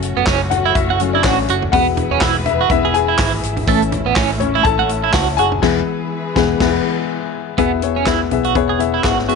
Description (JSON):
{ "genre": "piano-driven pop", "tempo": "123 BPM", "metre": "4/4", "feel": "swing 56% on 16ths", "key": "E major", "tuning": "A4 = 440 Hz", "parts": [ { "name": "warm upright piano", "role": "accompaniment", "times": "0.0-9.4 s", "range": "B2 to A5", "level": "-18 LUFS", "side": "left 13 dB", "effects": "none" }, { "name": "dark studio string section", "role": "sustained chords", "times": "0.0-7.6 s", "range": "E3 to B4", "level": "-26 LUFS", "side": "equal", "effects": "none" }, { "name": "vintage muted fingered electric bass", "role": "bass", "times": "0.0-9.4 s", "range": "E1 to C#2", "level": "-23 LUFS", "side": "right 1 dB", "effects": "none" }, { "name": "natural country drum kit", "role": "drums", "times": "0.0-9.4 s", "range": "crash cymbal, handclaps, hi-hat, kick drum, snare drum, toms", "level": "-21 LUFS", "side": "right 1 dB", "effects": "none" }, { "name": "twelve-string electric guitar", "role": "riff", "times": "0.2-9.4 s", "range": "A3 to G#4", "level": "-18 LUFS", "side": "right 16 dB", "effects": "tremolo" } ], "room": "light reverb, small room reverb", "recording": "1960s-style stereo with parts hard left and right, nothing above 10.9 kHz", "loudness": "-14 LUFS", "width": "side -4 dB against mid", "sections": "0.0-7.6 A section; 7.6-9.4 B section", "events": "upright piano solo 0.0-7.6; band accent 5.6-7.6", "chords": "0.0 F#m; 1.7 E; 3.7 A; 5.6 E", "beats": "0.27 0.76 1.24 | 1.73 2.22 2.71 3.19 | 3.68 4.17 4.66 5.14 | 5.63 6.12 6.60 7.09 | 7.58 8.07 8.55 9.04" }